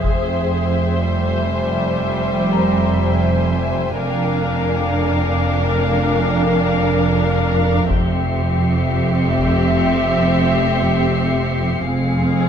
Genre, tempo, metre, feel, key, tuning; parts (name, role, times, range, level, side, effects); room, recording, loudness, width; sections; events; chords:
cinematic, suspense film score; 61 BPM; 4/4; straight; A4 = 440 Hz
muted studio violin section; melody; 0.0-12.5 s; E5 to F5; -25 LUFS; left 1 dB
muted studio violin section; second line; 0.0-12.5 s; G4 to C5; -23 LUFS; left 4 dB
muted studio viola section; accompaniment; 0.0-12.5 s; G3 to Ab4; -23 LUFS; right 1 dB
muted studio cello section; bass; 0.0-12.5 s; F2; -20 LUFS; right 3 dB
muted studio double bass section; bass; 0.0-12.5 s; F1; -22 LUFS; right 1 dB
taiko ensemble; drums; 0.0-2.0, 7.9-9.8 s; -24 LUFS; left 1 dB
muted studio violin section; texture; 0.0-12.5 s; G5 to Db7; -31 LUFS; left 1 dB
Celtic harp; texture; 2.5-11.8 s; Bb4 to Bb5; -30 LUFS; left 5 dB
moderate scoring stage reverb, RT60 1.5 s; minimal, uncompressed stereo recording; -15 LUFS; side -8 dB against mid
0.0-12.5 A section
0.0 C/F; 4.0 Bb/F; 7.9 C/F